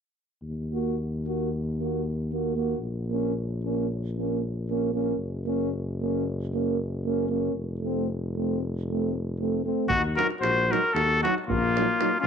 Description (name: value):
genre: balkan folk, Balkan brass band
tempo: 228 BPM (eighths)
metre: 9/8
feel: straight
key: Eb dorian sharp4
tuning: A4 = 440 Hz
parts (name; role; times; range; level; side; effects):
- mellow tuba; bass; 0.4-12.3 s; F1 to Eb2; -30 LUFS; left 1 dB; none
- dark euphonium; accompaniment; 0.7-12.1 s; Gb3 to Bb3; -30 LUFS; right 10 dB; none
- warm trombone; accompaniment; 0.7-12.1 s; C4 to Gb4; -33 LUFS; left 14 dB; none
- cornet with straight mute; melody; 9.9-12.3 s; F4 to C5; -24 LUFS; left 1 dB; none
- clear flugelhorn; second line; 9.9-12.3 s; Bb3 to Gb4; -30 LUFS; left 12 dB; slapback echo
- davul; percussion; 9.9-12.2 s; none; -32 LUFS; right 6 dB; none
room: moderate spring reverb, RT60 1.2 s, small room reverb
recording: 1960s-style stereo with parts hard left and right, nothing above 10.7 kHz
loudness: -25 LUFS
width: side -7 dB against mid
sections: 0.4-9.9 A section; 9.9-12.3 B section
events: none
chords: 0.4 Ebm; 2.8 Bbm; 5.2 Gb; 7.5 F; 9.9 Ebm